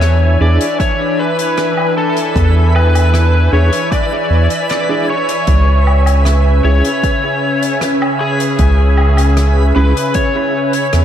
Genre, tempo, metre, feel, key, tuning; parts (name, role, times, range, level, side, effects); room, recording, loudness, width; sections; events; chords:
ambient dub; 77 BPM; 4/4; straight; E mixolydian; A4 = 440 Hz
overdriven slide guitar; melody; 0.0-11.0 s; G#4 to D5; -17 LUFS; left 2 dB; dub echo
warm analog pad; sustained chords; 0.0-11.0 s; C#3 to G#5; -18 LUFS; equal; chorus
round analog bass; bass; 0.0-11.0 s; C#2 to E2; -10 LUFS; equal
soft-mallet drum kit; drums; 0.0-11.0 s; hi-hat, rim click, woodblock; -24 LUFS; equal; dub echo
backwards swelling texture; texture; 0.0-11.0 s; B4; -23 LUFS; right 2 dB; built-in reverb
mellow electric guitar; stabs; 0.4-9.9 s; C#4 to G#4; -23 LUFS; right 2 dB; tremolo, dub echo
electronic kick drum; drums; 0.8-10.3 s; -17 LUFS; equal; overdrive
light reverb, small room ambience; -10 LUFS; side -10 dB against mid
0.0-11.0 A section
0.0 E7; 5.5 C#m